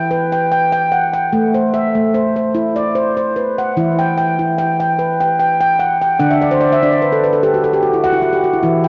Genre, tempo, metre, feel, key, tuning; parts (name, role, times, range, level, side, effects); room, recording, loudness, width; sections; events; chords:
world meditative, meditative tuned percussion; 74 BPM; 3/4; straight; A4 = 443 Hz
handpan; solo; 0.0-8.9 s; D3 to G5; -15 LUFS; equal; cassette tape
wet lush hall reverb, RT60 2.4 s; home recording on cassette, nothing above 7.6 kHz; -15 LUFS; mono
0.0-8.9 A section
handpan fill 6.2-8.6
0.0 Em; 1.3 Am; 3.8 Em; 6.2 D